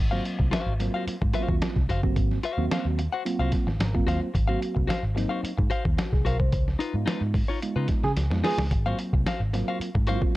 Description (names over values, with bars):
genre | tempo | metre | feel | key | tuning
funk | 110 BPM | 4/4 | straight | Ab mixolydian | A4 = 440 Hz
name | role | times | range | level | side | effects
vintage muted picked electric bass | bass | 0.0-10.2 s | Gb1 to Db3 | -27 LUFS | equal | none
clean electric guitar | accompaniment | 0.1-10.3 s | Eb4 to Gb5 | -32 LUFS | left 4 dB | none
mellow reed electric piano | stabs | 0.1-10.4 s | Gb3 to C5 | -31 LUFS | right 2 dB | phaser
lo-fi sampler-style drum kit | drums | 0.3-10.3 s | hi-hat, kick drum, snare drum | -26 LUFS | equal | none
clear trombone | second line | 8.0-8.6 s | Ab4 | -30 LUFS | right 3 dB | none
room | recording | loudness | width
little or no reverb | dark, warm production | -23 LUFS | side -17 dB against mid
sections
0.0-10.4 A section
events
reed electric piano fill 3.5-4.3; band accent 6.5-8.7; drum fill 8.2-8.7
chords
0.0 Ab13; 6.5 Db9; 8.7 Ab13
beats
0.52 1.07 1.62 | 2.16 2.71 3.25 3.80 | 4.35 4.89 5.44 5.99 | 6.53 7.08 7.62 8.17 | 8.72 9.26 9.81 10.35